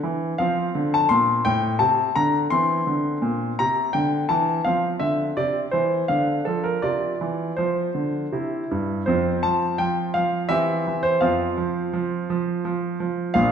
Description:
classical-period piano sonatina; 84 BPM; 3/4; straight; F major; A4 = 441 Hz
clear concert grand piano; solo; 0.0-13.5 s; Bb1 to C6; -20 LUFS; equal
wet recital hall reverb, RT60 1.5 s; minimal, uncompressed stereo recording; -20 LUFS; side -7 dB against mid
0.0-9.1 A section; 9.1-13.5 B section
0.4 F; 2.5 C7; 4.6 F5; 6.1 Dm; 6.8 Csus4; 8.3 C; 9.1 F5; 10.5 C/E; 11.2 F5
| 0.40 1.10 1.81 | 2.52 3.24 3.95 | 4.65 5.36 6.08 | 6.83 7.58 8.33 | 9.07 9.78 10.49 | 11.22 11.93 12.63 | 13.34

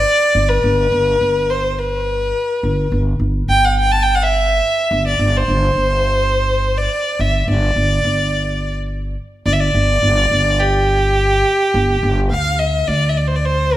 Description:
arabic; 105 BPM; 4/4; straight; G maqam rast; A4 = 441 Hz
rich violin; melody; 0.0-13.8 s; G4 to A5; -16 LUFS; equal
upright bass; bass; 0.0-13.8 s; G1 to D2; -18 LUFS; equal
moderate recital hall reverb, RT60 1.7 s; -14 LUFS; side -13 dB against mid
0.0-12.3 A section; 12.3-13.8 B section
0.36 | 0.93 1.50 2.07 2.64 | 3.21 3.78 4.35 4.92 | 5.49 6.05 6.62 7.19 | 7.76 8.33 8.90 9.47 | 10.04 10.61 11.18 11.74 | 12.31 12.88 13.45

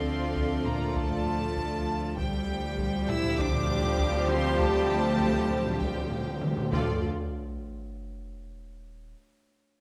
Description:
cinematic, suspense film score; 99 BPM; 4/4; straight; A4 = 441 Hz
warm symphonic violin section; melody; 0.0-7.1 s; D5 to E6; -39 LUFS; equal
warm chamber violin section; second line; 0.0-7.1 s; G4 to D5; -38 LUFS; equal
warm studio viola section; accompaniment; 0.0-7.1 s; F3 to G4; -38 LUFS; equal
dark French horn section; sustained chords; 0.0-7.0 s; F3 to F4; -40 LUFS; equal
mellow trombone section; sustained chords; 0.0-7.0 s; F3 to A3; -38 LUFS; equal
clear chamber double bass section; bass; 0.0-7.1 s; D2; -38 LUFS; equal
warm chamber cello section; bass; 0.0-7.1 s; D3 to E4; -35 LUFS; equal
sub bass with octave; drone; 0.0-7.1 s; D2; -38 LUFS; equal
taiko ensemble; drums; 0.4-7.9 s; -37 LUFS; equal
timpani; percussion; 2.2-7.0 s; D3; -39 LUFS; equal
sub drop; sound effects; 6.7-9.1 s; -40 LUFS; equal
moderate scoring stage reverb, RT60 1.6 s; -28 LUFS; mono
0.0-7.0 A section; 7.0-9.5 B section
timpani fill 2.2-7.0; drum fill 6.4-7.0; impact 7.0-9.5
0.0 Dm; 2.2 Csus4/D; 6.7 Dm; 7.0 N.C.
0.36 0.97 1.57 | 2.18 2.78 3.39 4.00 | 4.60 5.21 5.82 6.42 | 7.03 7.63 8.24 8.85

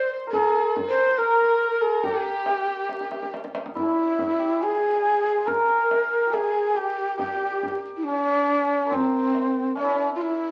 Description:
Persian modal ensemble; 70 BPM; 4/4; straight; G dastgah shur, C dastgah homayun from 3.8 s; A4 = 440 Hz
breathy reedy ney; melody; 0.0-10.5 s; C4 to C5; -25 LUFS; equal
rich studio violin section; second line; 0.0-3.3 s; G4 to C5; -34 LUFS; equal
santur; second line; 0.0-10.5 s; Bb3 to D5; -29 LUFS; equal
tombak; percussion; 0.3-10.3 s; -39 LUFS; equal
wet studio reverb, RT60 0.8 s; very old 78 rpm record, vinyl crackle; -23 LUFS; mono
0.0-3.8 A section; 3.8-10.5 B section
drum fill 2.9-3.8
| 0.34 1.19 2.05 2.91 | 3.76 4.62 5.48 6.34 | 7.20 8.05 8.91 9.77

